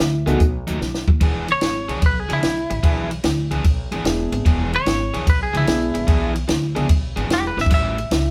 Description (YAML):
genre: electric blues shuffle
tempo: 148 BPM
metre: 4/4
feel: swing 68% on 8ths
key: E mixolydian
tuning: A4 = 439 Hz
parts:
  - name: clear upright piano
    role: accompaniment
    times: 0.0-0.4, 4.1-6.9 s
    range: G#3 to E5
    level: -27 LUFS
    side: equal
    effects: none
  - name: overdriven electric guitar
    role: riff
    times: 0.0-8.2 s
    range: A2 to G#4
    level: -30 LUFS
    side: equal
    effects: none
  - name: upright bass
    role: bass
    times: 0.0-8.3 s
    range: E1 to D#2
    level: -27 LUFS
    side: equal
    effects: none
  - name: compact cocktail drum kit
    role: drums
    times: 0.0-8.2 s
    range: hi-hat, kick drum, ride cymbal, snare drum, splash cymbal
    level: -22 LUFS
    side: equal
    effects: none
  - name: semi-hollow electric guitar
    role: melody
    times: 1.5-8.3 s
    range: E4 to E5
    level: -26 LUFS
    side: equal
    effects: harmonic tremolo
room: light reverb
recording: band playing live in one room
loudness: -20 LUFS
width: mono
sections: 0.0-1.2 A section; 1.2-8.3 A section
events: drum fill 0.8-1.2, 7.5; clean electric guitar solo 1.2-8.3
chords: 0.4 B7; 1.2 E7; 7.7 A7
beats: 0.00 0.40 0.81 | 1.21 1.62 2.02 2.43 | 2.83 3.24 3.64 4.05 | 4.46 4.86 5.27 5.67 | 6.08 6.49 6.89 7.30 | 7.71 8.12